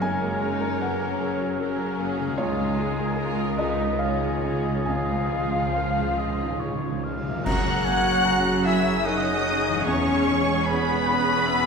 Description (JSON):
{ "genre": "cinematic, emotional film score for orchestra", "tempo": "67-77 BPM", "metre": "3/4", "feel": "rubato", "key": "F# mixolydian from 7.5 s", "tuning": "A4 = 440 Hz", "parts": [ { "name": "warm symphonic violin section", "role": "melody", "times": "0.0-11.7 s", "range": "E#4 to F#6", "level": "-30 LUFS", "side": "left 2 dB", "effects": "none" }, { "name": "mellow clarinet", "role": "second line", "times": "0.0-11.7 s", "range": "B3 to G#4", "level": "-33 LUFS", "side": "equal", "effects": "none" }, { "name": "rich symphonic violin section", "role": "second line", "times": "0.0-11.7 s", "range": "C#4 to F#5", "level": "-33 LUFS", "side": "left 2 dB", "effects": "none" }, { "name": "silver concert flute", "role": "second line", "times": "0.0-11.7 s", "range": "G#4 to F#5", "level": "-31 LUFS", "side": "left 1 dB", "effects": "none" }, { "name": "warm oboe", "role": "second line", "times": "0.0-11.7 s", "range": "A#4 to A#5", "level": "-32 LUFS", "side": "right 1 dB", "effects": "none" }, { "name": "felt-muted upright piano", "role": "accompaniment", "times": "0.0-11.7 s", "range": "C#2 to G#5", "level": "-31 LUFS", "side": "left 2 dB", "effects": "none" }, { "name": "warm symphonic viola section", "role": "accompaniment", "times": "0.0-11.7 s", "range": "E#3 to G#4", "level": "-32 LUFS", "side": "right 3 dB", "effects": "none" }, { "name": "dark French horn section", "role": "sustained chords", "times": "0.0-11.7 s", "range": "B3 to G#4", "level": "-32 LUFS", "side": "left 4 dB", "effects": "none" }, { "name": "concert harp", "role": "arpeggios", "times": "0.0-11.7 s", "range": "E2 to G#4", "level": "-35 LUFS", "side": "left 7 dB", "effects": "none" }, { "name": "rich symphonic cello section", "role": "bass", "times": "0.0-11.7 s", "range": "C#2 to F#2", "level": "-32 LUFS", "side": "right 4 dB", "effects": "none" }, { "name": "rich symphonic double bass section", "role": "bass", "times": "0.0-11.7 s", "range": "E1 to C#2", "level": "-32 LUFS", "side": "right 4 dB", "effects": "none" }, { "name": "timpani", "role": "percussion", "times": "2.4-7.5 s", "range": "C#3", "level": "-35 LUFS", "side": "equal", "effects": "none" }, { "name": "cymbal swell, clash cymbals and concert bass drum", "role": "percussion", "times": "4.9-9.0 s", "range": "none", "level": "-34 LUFS", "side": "equal", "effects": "none" } ], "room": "wet concert hall reverb, RT60 2.0 s", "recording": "heard from further back in the room", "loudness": "-21 LUFS", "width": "side -5 dB against mid", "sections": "0.0-7.5 A section; 7.5-11.7 B section", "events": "timpani fill 2.4-7.5; band accent 7.5-8.2", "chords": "0.0 F#add9; 2.4 C#add9; 7.5 F#add9; 9.9 C#m7/E" }